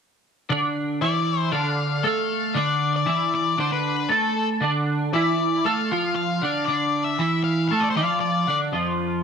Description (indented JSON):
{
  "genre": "rock",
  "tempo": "116 BPM",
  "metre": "4/4",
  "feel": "straight",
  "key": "D minor",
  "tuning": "A4 = 439 Hz",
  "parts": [
    { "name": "twelve-string electric guitar", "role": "riff", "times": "0.5-9.2 s", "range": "F2 to A4", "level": "-22 LUFS", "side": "right 2 dB", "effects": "flanger, double-tracked left and right" },
    { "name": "octave-fuzz lead guitar", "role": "melody", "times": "1.0-8.6 s", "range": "A4 to F5", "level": "-25 LUFS", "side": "left 7 dB", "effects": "distortion, slapback echo" }
  ],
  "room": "moderate echo chamber reverb, RT60 2.1 s",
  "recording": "none",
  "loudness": "-20 LUFS",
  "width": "side -6 dB against mid",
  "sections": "0.5-9.2 A section",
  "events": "none",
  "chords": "0.5 Dm; 8.7 F5",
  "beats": "| 0.49 1.00 1.52 2.04 | 2.55 3.07 3.58 4.10 | 4.61 5.13 5.64 6.16 | 6.67 7.19 7.70 8.22 | 8.73"
}